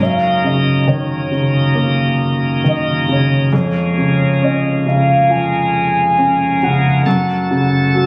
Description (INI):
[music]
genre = pop ballad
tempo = 68 BPM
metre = 4/4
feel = straight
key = unclear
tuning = A4 = 436 Hz
[part]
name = hollow clarinet-like synth lead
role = melody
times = 0.0-8.1 s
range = Db5 to Ab5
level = -20 LUFS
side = equal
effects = chorus
[part]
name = warm grand piano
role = accompaniment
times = 0.0-8.1 s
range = F2 to Db4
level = -17 LUFS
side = equal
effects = none
[part]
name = bright tonewheel organ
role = sustained chords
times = 0.0-8.1 s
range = F2 to A4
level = -22 LUFS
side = equal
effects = overdrive, slow rotary speaker
[sound]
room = light reverb, studio reverb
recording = recorded on a phone in the room, club reverb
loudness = -15 LUFS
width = mono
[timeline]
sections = 0.0-8.1 A section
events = none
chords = 0.0 Gb6; 3.5 Bbm7/F; 7.1 Gbm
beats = | 0.00 0.88 1.76 2.65 | 3.53 4.41 5.29 6.17 | 7.06 7.94